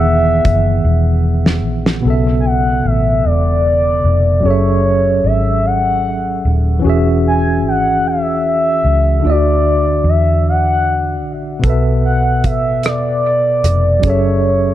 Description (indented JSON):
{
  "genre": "slow six-eight R&B",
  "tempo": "50 BPM (dotted quarters)",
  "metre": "6/8",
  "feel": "straight",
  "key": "unclear",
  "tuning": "A4 = 440 Hz",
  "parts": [
    { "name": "gliding portamento lead", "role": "melody", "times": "0.0-14.7 s", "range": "C#5 to G#5", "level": "-16 LUFS", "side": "equal", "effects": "chorus, dub echo" },
    { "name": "tine electric piano", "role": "accompaniment", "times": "0.0-14.7 s", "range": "B2 to F#5", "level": "-17 LUFS", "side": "equal", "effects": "fast stereo tremolo" },
    { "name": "vintage muted fingered electric bass", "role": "bass", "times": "0.0-14.7 s", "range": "D#1 to E2", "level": "-15 LUFS", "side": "equal", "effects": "none" },
    { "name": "damped 70s drum kit", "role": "drums", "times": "0.4-2.0, 11.6-14.2 s", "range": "hi-hat, kick drum, rim click, snare drum", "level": "-16 LUFS", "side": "equal", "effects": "none" }
  ],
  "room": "small room reverb",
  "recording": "echo-heavy mix",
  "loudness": "-12 LUFS",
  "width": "side -12 dB against mid",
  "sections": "0.0-2.0 A section; 2.0-14.7 B section",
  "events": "drum fill 0.8-2.0",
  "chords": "0.0 Emaj7; 2.0 B7sus4; 4.4 F#m9; 6.8 E69; 9.2 Dadd9; 11.6 B7sus4; 14.0 F#m9",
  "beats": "0.84 | 2.04 3.24 | 4.44 5.64 | 6.84 8.04 | 9.24 10.44 | 11.64 12.84 | 14.04"
}